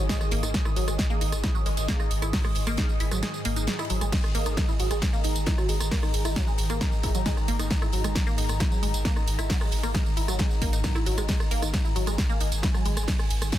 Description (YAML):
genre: driving peak-time techno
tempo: 134 BPM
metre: 4/4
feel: straight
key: unclear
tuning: A4 = 440 Hz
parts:
  - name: resonant blip pluck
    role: riff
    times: 0.0-12.9 s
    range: F#3 to E4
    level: -33 LUFS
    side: equal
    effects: phaser, sidechain pumping, ping-pong delay
  - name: saturated sub bass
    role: bass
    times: 0.0-13.5 s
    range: G#1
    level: -29 LUFS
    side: equal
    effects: sidechain pumping, low-pass filter
  - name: swarming drone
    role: drone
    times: 0.0-13.6 s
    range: G#2 to D#3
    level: -37 LUFS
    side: equal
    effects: built-in reverb, sidechain pumping
  - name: airy breathy pad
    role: texture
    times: 0.0-13.6 s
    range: G#4 to D#6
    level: -36 LUFS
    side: equal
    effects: chorus, sidechain pumping
  - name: big rock drum kit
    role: drums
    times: 0.1-13.6 s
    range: hi-hat, ride cymbal, snare drum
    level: -42 LUFS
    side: left 3 dB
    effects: high-pass filter on cymbals, high-pass filter on hats, high-pass filter on snare, high-pass filter on room
  - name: electronic kick drum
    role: drums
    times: 0.1-13.6 s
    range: none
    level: -26 LUFS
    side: equal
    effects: none
  - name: techno drum kit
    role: drums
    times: 0.1-13.6 s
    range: crash cymbal, hi-hat, ride cymbal, rim click, snare drum, tambourine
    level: -31 LUFS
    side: right 1 dB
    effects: sidechain pumping on hats, sidechain pumping on perc, sidechain pumping on cymbals
room: light reverb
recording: dense, heavily limited modern master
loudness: -23 LUFS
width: side -13 dB against mid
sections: 0.0-13.6 A section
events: kick drops out 3.2-4.1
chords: 0.0 G#5